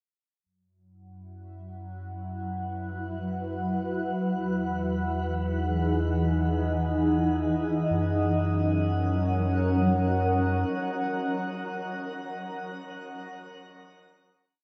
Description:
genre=ambient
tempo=free time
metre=none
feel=none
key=F# mixolydian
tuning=A4 = 440 Hz
part: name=shimmering ambient pad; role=sustained chords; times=2.1-12.3 s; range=E3 to F#5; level=-30 LUFS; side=equal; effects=chorus, built-in reverb, phaser
part: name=warm sub bass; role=bass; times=0.5-10.6 s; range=E2 to F#2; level=-32 LUFS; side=equal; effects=none
room=wet shimmer reverb, RT60 7.8 s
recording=dark, warm production, nothing above 7.9 kHz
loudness=-28 LUFS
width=mono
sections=0.5-7.9 A section; 7.9-11.6 final chord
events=fade-in on ambient pad 0.5-7.9; fade-in on sub bass 0.5-7.9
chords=0.5 F#7sus4; 4.2 Emaj9; 7.9 F#

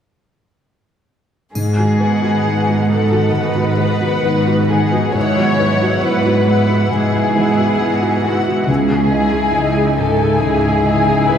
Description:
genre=cinematic, emotional film score for orchestra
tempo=68 BPM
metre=4/4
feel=rubato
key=unclear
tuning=A4 = 441 Hz
part: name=muted studio violin section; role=second line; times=1.5-11.4 s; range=F#4 to C#5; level=-19 LUFS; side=left 2 dB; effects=none
part: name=concert harp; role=arpeggios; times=1.5-11.4 s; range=G#2 to G#5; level=-23 LUFS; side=left 4 dB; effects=none
part: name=felt-muted upright piano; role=accompaniment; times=1.6-11.4 s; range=C#2 to D#5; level=-20 LUFS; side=left 1 dB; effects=none
part: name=muted studio cello section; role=bass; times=1.6-11.4 s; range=C#2 to G#2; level=-18 LUFS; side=right 3 dB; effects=none
part: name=triangle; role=percussion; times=1.6-3.3 s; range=none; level=-36 LUFS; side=left 1 dB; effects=none
part: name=muted studio violin section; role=melody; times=2.0-11.4 s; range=F#5 to G#5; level=-24 LUFS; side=left 4 dB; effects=none
part: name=muted studio viola section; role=accompaniment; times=2.0-11.4 s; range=B3 to E4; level=-23 LUFS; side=right 2 dB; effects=none
room=wet church reverb, RT60 2.7 s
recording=recorded in a church or concert hall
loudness=-13 LUFS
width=side -8 dB against mid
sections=1.5-11.4 A section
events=none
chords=1.5 G#m7; 5.2 Eadd9/G#; 8.7 C#madd9

